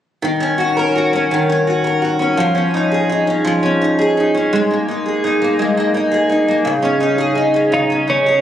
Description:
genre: pop.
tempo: 56 BPM (dotted quarters).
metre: 6/8.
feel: straight.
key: Eb minor.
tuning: A4 = 440 Hz.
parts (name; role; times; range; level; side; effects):
picked steel-string acoustic guitar; accompaniment; 0.2-8.4 s; Db3 to Bb4; -14 LUFS; equal; double-tracked left and right.
twelve-string electric guitar; melody; 7.7-8.4 s; Db4 to Eb4; -14 LUFS; right 1 dB; wide subtle chorus.
room: moderate lush hall reverb, RT60 2.0 s.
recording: recorded on a phone in the room, club reverb.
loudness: -13 LUFS.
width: side -10 dB against mid.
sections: 0.2-8.4 A section.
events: none.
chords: 0.2 Ebm7; 2.4 Dbadd9/F; 4.5 Absus2; 6.6 Dbsus2.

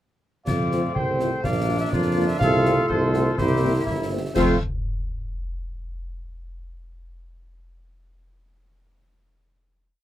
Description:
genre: military-style march for wind band.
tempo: 123 BPM.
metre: 2/4.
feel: straight.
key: F major.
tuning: A4 = 435 Hz.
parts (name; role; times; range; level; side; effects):
mellow cornet; melody; 0.5-4.6 s; C5 to G5; -29 LUFS; right 2 dB; none.
clear woodwind section; second line; 0.5-4.6 s; E4 to D5; -28 LUFS; left 2 dB; none.
clear trombone section; sustained chords; 0.5-4.6 s; A3 to F4; -28 LUFS; equal; none.
warm tuba; bass; 0.5-4.6 s; G1 to F2; -23 LUFS; right 1 dB; none.
concert snare drum, clash cymbals and concert bass drum; drums; 0.5-4.6 s; none; -29 LUFS; left 1 dB; none.
mellow French horn section; accompaniment; 0.7-4.6 s; A3 to F4; -26 LUFS; left 2 dB; none.
room: moderate booth ambience, RT60 0.2 s.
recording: none.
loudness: -20 LUFS.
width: side -12 dB against mid.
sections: 0.5-4.4 A section; 4.4-5.3 final chord.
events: none.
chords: 0.5 F; 1.4 Bb; 2.4 F/C; 3.4 C7; 4.4 F.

